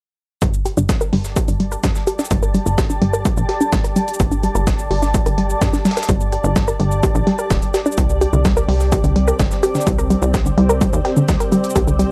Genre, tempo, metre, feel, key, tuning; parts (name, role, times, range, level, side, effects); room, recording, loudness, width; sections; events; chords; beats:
melodic techno; 127 BPM; 4/4; straight; G minor; A4 = 440 Hz
unison pluck; arpeggios; 0.4-12.1 s; D3 to Bb4; -21 LUFS; equal; sidechain pumping, analog delay
plucky analog bass; bass; 0.4-12.0 s; D1 to G2; -22 LUFS; equal; sidechain pumping
breakbeat sampler-style drum kit; drums; 0.4-12.1 s; hi-hat, snare drum; -34 LUFS; equal; sidechain pumping on hats, high-pass filter on hats, high-pass filter on snare
electronic kick drum; drums; 0.4-11.9 s; -22 LUFS; equal
shaker; drums; 0.4-12.1 s; -36 LUFS; equal
granular cloud pad; texture; 1.3-12.1 s; C4 to A5; -27 LUFS; equal; built-in reverb, sidechain pumping
little or no reverb; dry, gritty hardware recording, transformer saturation; -17 LUFS; mono
0.4-12.1 A section
filter sweep on synth arpeggio sound 0.4-12.1
0.4 G5; 8.0 C5
| 0.42 0.89 1.36 1.84 | 2.31 2.78 3.25 3.73 | 4.20 4.67 5.14 5.62 | 6.09 6.56 7.03 7.51 | 7.98 8.45 8.92 9.39 | 9.87 10.34 10.81 11.29 | 11.76